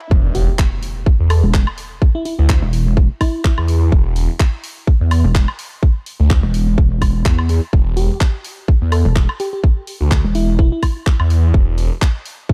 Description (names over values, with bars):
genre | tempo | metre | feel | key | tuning
bass house | 126 BPM | 4/4 | swing 55% on 16ths | E minor | A4 = 439 Hz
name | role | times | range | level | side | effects
garage drum kit | drums | 0.0-12.4 s | handclaps, hi-hat, toms, woodblock | -28 LUFS | equal | high-pass filter on snare, high-pass filter on hats, high-pass filter on toms, high-pass filter on perc
swell and impact | sound effects | 0.0-2.0 s | none | -26 LUFS | equal | none
phased detuned saw bass | bass | 0.1-11.9 s | E1 to E2 | -16 LUFS | equal | phaser, overdrive, sidechain pumping
electronic kick drum | drums | 0.1-12.5 s | none | -16 LUFS | equal | high-pass filter on kick
bell-like FM electric piano | melody | 0.3-3.9, 8.0-10.8 s | E4 to A4 | -28 LUFS | equal | chorus, tape echo
pulsing pluck wobble bass | bass | 1.4-10.7 s | E1 to E2 | -18 LUFS | equal | chorus, tube saturation, sidechain pumping
room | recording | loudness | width
little or no reverb | dark, warm production, high-pass filter | -16 LUFS | mono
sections
0.1-12.5 A section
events
drop 0.1-12.5; impact 0.1-2.0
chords
none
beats
| 0.11 0.59 1.06 1.54 | 2.02 2.49 2.97 3.44 | 3.92 4.40 4.87 5.35 | 5.83 6.30 6.78 7.25 | 7.73 8.21 8.68 9.16 | 9.64 10.11 10.59 11.06 | 11.54 12.02 12.49